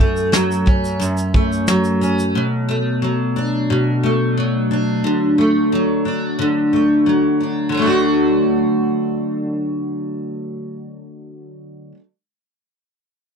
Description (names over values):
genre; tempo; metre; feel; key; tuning
acoustic pop; 89 BPM; 4/4; straight; D major; A4 = 445 Hz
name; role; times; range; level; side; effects
picked steel-string acoustic guitar; accompaniment; 0.0-12.0 s; F#2 to F#4; -16 LUFS; equal; double-tracked left and right
soft brush drum kit; drums; 0.2-2.3 s; kick drum, shaker, snare drum; -17 LUFS; equal; none
room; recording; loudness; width
moderate booth ambience, RT60 0.2 s; dry, close 1970s-style studio recording; -15 LUFS; side -6 dB against mid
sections
0.0-7.7 A section; 7.7-10.4 B section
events
none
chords
0.0 F#m; 2.4 Bm7; 5.0 D